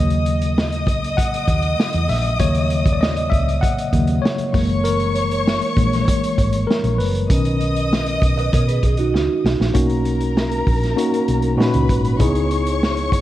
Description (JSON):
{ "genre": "lush 1970s-style soul", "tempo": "98 BPM", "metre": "4/4", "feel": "straight", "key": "B major", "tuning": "A4 = 440 Hz", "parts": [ { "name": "dark studio string section", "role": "second line", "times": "0.0-13.2 s", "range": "A#4 to D#6", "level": "-25 LUFS", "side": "left 1 dB", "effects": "none" }, { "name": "tine electric piano", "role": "accompaniment", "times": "0.0-13.2 s", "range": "A#2 to F#5", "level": "-21 LUFS", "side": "left 2 dB", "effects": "overdrive, fast stereo tremolo" }, { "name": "hollow-body short-scale fingered electric bass", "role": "bass", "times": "0.0-13.2 s", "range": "F#1 to B2", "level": "-21 LUFS", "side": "equal", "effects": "none" }, { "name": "vintage drum kit", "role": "drums", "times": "0.1-13.2 s", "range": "hi-hat, kick drum, snare drum", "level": "-21 LUFS", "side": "equal", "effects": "none" }, { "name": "mellow electric guitar", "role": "riff", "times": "8.4-9.7 s", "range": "D#4 to D#5", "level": "-23 LUFS", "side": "right 7 dB", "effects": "phaser" } ], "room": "light reverb, studio reverb", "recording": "dark, warm production", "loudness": "-16 LUFS", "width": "side -14 dB against mid", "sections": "0.0-9.8 A section; 9.8-13.2 B section", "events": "tine electric piano solo 0.0-9.8; drum fill 9.1-9.8", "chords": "0.0 D#m7; 4.5 F#7; 7.3 Bmaj7; 12.2 C#m7" }